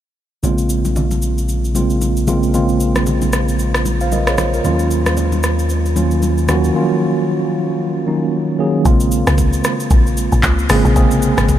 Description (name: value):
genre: amapiano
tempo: 114 BPM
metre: 4/4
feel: swing 58% on 16ths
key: Bb minor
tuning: A4 = 440 Hz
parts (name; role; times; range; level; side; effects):
- mellow tine electric piano; accompaniment; 0.4-11.6 s; C3 to F5; -16 LUFS; right 1 dB; medium stereo tremolo
- punchy sub bass; bass; 0.4-6.7 s; Bb1 to Eb2; -18 LUFS; equal; none
- smooth R&B drum kit; drums; 0.4-11.6 s; handclaps, hi-hat, kick drum, rim click, shaker; -20 LUFS; equal; none
- congas; percussion; 0.4-6.6 s; none; -27 LUFS; left 3 dB; none
- woody log drum bass; bass; 8.9-11.6 s; Ab1 to Db2; -16 LUFS; equal; none
room: moderate huge ambient reverb, RT60 7.8 s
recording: dreamy mix soaked in reverb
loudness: -13 LUFS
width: side -11 dB against mid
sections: 0.4-8.9 A section; 8.9-11.6 B section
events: drop 8.9-11.6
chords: 0.4 Bbm9; 4.6 Ebm9; 8.9 Bbm9